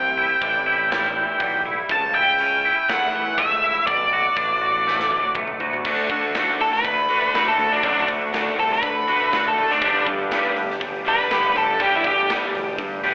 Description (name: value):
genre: quiet-loud alternative rock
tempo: 121 BPM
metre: 4/4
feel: straight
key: unclear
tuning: A4 = 440 Hz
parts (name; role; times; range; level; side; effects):
- octave-fuzz lead guitar; melody; 0.0-12.3 s; D4 to A5; -19 LUFS; equal; distortion, slapback echo, digital delay
- twangy electric guitar; arpeggios; 0.0-13.1 s; G2 to G4; -23 LUFS; equal; ensemble chorus, slapback echo
- growling picked electric bass; bass; 0.0-13.1 s; E1 to D3; -30 LUFS; equal; overdrive
- big rock drum kit; drums; 0.4-13.1 s; crash cymbal, hi-hat, kick drum, snare drum, toms; -29 LUFS; equal; none
- sludgy distorted guitar; riff; 5.8-13.1 s; G2 to D4; -30 LUFS; left 2 dB; overdrive, slapback echo
room: moderate club reverb, RT60 0.7 s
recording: live gig heard through the venue's PA, club reverb, telephone sound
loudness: -17 LUFS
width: side -23 dB against mid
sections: 0.0-5.9 A section; 5.9-13.1 B section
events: half time 0.0-5.9; drum fill 4.9-5.9; lead electric guitar solo 5.9-13.1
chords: 0.0 Cadd9; 1.9 A/C#; 3.9 Bm7; 5.9 D; 9.8 G